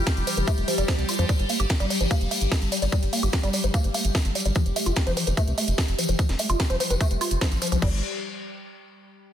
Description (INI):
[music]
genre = psychedelic trance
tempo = 147 BPM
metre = 4/4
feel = straight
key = unclear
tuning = A4 = 440 Hz
[part]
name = evolving wavetable pad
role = sustained chords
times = 0.0-7.8 s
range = G3 to G4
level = -32 LUFS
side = left 1 dB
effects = phaser, built-in reverb, sidechain pumping
[part]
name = woody wave-folded pluck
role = riff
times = 0.0-8.0 s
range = E3 to G4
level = -29 LUFS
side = moving between left 4 dB and right 3 dB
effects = chorus, auto-pan, sidechain pumping, tape echo
[part]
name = round analog bass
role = bass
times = 0.0-8.0 s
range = F1 to F2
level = -25 LUFS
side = equal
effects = none
[part]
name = drum and bass drum kit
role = drums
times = 0.1-7.9 s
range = crash cymbal, hi-hat, snare drum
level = -30 LUFS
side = right 2 dB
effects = overdrive
[part]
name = electronic kick drum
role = drums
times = 0.1-7.9 s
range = none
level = -24 LUFS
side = equal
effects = overdrive
[part]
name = tambourine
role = percussion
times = 0.1-7.8 s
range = none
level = -34 LUFS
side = left 5 dB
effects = none
[sound]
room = light reverb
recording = dense, heavily limited modern master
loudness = -21 LUFS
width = side -10 dB against mid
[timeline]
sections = 0.0-7.8 A section; 7.8-9.3 B section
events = filter sweep on analog synth bass 0.0-7.8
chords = 0.0 F5; 1.3 Fsus4 (rootless); 4.6 F5; 7.8 N.C.